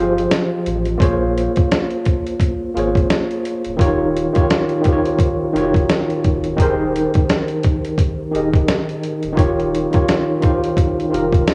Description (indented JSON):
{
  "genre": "lo-fi hip hop",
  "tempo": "86 BPM",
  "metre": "4/4",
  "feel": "swing 58% on 16ths",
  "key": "unclear",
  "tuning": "A4 = 440 Hz",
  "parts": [
    { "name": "tine electric piano", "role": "accompaniment", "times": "0.0-11.5 s", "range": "Eb3 to F5", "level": "-20 LUFS", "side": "equal", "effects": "overdrive" },
    { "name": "sub bass with octave", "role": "bass", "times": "0.0-11.4 s", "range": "D1 to Bb1", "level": "-29 LUFS", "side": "equal", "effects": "none" },
    { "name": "trip hop sampler-style drum kit", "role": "drums", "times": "0.2-11.5 s", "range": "hi-hat, kick drum, snare drum", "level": "-20 LUFS", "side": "equal", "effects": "none" }
  ],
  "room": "light reverb",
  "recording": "small room ambience",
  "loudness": "-18 LUFS",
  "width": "mono",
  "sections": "0.0-11.5 A section",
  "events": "break 0.0-1.0",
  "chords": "0.0 Fm9; 1.0 Bbm7; 3.8 Eb7; 6.6 Abmaj9/Eb; 9.4 Eb7"
}